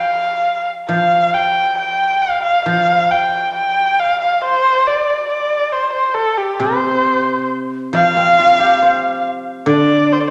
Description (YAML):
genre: chinese traditional, Chinese chamber ensemble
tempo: 68 BPM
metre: 2/4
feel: rubato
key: unclear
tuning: A4 = 440 Hz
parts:
  - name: dark erhu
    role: melody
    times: 0.0-10.3 s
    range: G4 to G5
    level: -16 LUFS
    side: equal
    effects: none
  - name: guzheng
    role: accompaniment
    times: 0.0-10.3 s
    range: C3 to C5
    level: -21 LUFS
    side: equal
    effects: none
  - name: xiao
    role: second line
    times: 7.9-10.1 s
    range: D5 to F5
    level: -20 LUFS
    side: equal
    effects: none
room: wet recital hall reverb, RT60 1.6 s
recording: none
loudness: -15 LUFS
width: mono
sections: 0.0-8.0 A section; 8.0-10.3 B section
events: none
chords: none